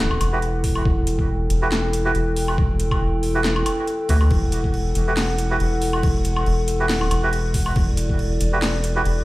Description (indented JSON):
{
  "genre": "deep dubstep",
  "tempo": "139 BPM",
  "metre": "4/4",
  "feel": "swing 54% on 16ths, half-time",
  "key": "E minor",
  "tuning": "A4 = 442 Hz",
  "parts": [
    { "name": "dark analog pad", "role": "sustained chords", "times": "0.0-9.2 s", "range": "E4 to G5", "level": "-26 LUFS", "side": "equal", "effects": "wide subtle chorus" },
    { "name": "soft dub sub bass", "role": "bass", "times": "0.0-9.2 s", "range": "E1 to D2", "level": "-21 LUFS", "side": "equal", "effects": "none" },
    { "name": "deep house drum kit", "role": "drums", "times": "0.1-9.1 s", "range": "crash cymbal, handclaps, hi-hat, snare drum, woodblock", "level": "-27 LUFS", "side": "equal", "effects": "overdrive, studio reverb" },
    { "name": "melodica", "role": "stabs", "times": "0.3-9.0 s", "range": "E4 to B4", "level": "-27 LUFS", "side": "right 2 dB", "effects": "dub echo" },
    { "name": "electronic kick drum", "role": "drums", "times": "0.6-8.2 s", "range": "none", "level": "-21 LUFS", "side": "equal", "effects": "studio reverb" }
  ],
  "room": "light reverb",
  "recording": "played on a big sound system in a bare room, stone room reverb",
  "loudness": "-18 LUFS",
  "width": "side -19 dB against mid",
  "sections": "0.0-9.2 A section",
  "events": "none",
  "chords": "0.0 Emadd9",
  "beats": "0.42 | 0.85 1.29 1.72 2.15 | 2.58 3.01 3.44 3.88 | 4.31 4.74 5.17 5.60 | 6.04 6.47 6.90 7.33 | 7.76 8.19 8.62 9.06"
}